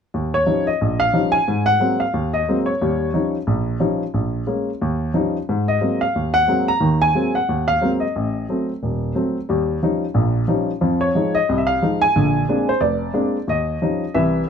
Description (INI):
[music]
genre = jazz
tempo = 180 BPM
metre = 4/4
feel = swing 62% on 8ths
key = unclear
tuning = A4 = 440 Hz
[part]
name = warm baby grand piano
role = solo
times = 0.1-14.5 s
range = Eb1 to Bb5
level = -17 LUFS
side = equal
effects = none
[sound]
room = light reverb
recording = close, detailed microphones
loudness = -17 LUFS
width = side -7 dB against mid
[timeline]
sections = 0.1-14.5 A section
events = none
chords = 0.1 Eb9; 1.5 Ab9; 2.8 Eb9; 4.1 Bbm7; 4.8 Eb9; 5.5 Ab9; 8.1 Adim7; 9.5 Eb9; 10.8 Fm7; 12.1 Bb9; 13.5 Eb9